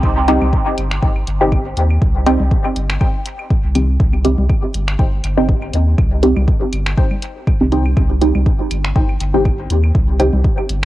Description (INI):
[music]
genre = dub techno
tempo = 121 BPM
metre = 4/4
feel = swing 55% on 16ths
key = C minor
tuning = A4 = 442 Hz
[part]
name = warm sub bass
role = bass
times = 0.0-10.8 s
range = G1 to Eb2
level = -17 LUFS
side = equal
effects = sidechain pumping
[part]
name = electronic kick drum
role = drums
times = 0.0-10.6 s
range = none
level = -16 LUFS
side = equal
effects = none
[part]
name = claves and congas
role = percussion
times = 0.0-10.7 s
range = none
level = -28 LUFS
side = equal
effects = sidechain pumping on perc, dub echo
[part]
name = filtered dub chord stab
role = stabs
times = 0.3-10.3 s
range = C4 to G4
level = -18 LUFS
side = right 1 dB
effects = phaser, sidechain pumping, cassette tape, dub echo
[part]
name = punchy analog drum machine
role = drums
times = 0.3-10.8 s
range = finger snaps, hi-hat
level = -25 LUFS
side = equal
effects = dub echo
[part]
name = filtered dub chord stab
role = riff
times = 1.0-9.4 s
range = Eb4 to G5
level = -30 LUFS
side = left 6 dB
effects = phaser, cassette tape, sidechain pumping, dub echo
[sound]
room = light reverb, digital ambience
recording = home recording on cassette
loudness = -13 LUFS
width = side -15 dB against mid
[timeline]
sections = 0.0-10.8 A section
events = filter sweep on synth stab 0.0-10.8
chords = 0.0 Cm